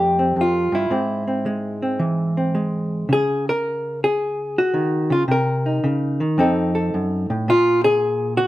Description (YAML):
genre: solo jazz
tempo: 110 BPM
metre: 4/4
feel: swing 66% on 8ths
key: Db major from 3.1 s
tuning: A4 = 441 Hz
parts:
  - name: hollow-body jazz guitar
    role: solo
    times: 0.0-8.5 s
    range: F2 to Bb4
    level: -18 LUFS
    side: equal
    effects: none
room: moderate studio reverb, RT60 0.8 s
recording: minimal, uncompressed stereo recording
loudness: -18 LUFS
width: side -15 dB against mid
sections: 0.0-3.1 A section; 3.1-8.5 B section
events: none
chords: 0.0 Fadd9; 0.9 Abaug; 3.1 Dbsus2; 5.3 Cm7; 6.4 F7b9; 7.5 Bb5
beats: 0.36 | 0.91 1.46 2.00 2.55 | 3.10 3.64 4.19 4.74 | 5.28 5.83 6.38 6.92 | 7.47 8.02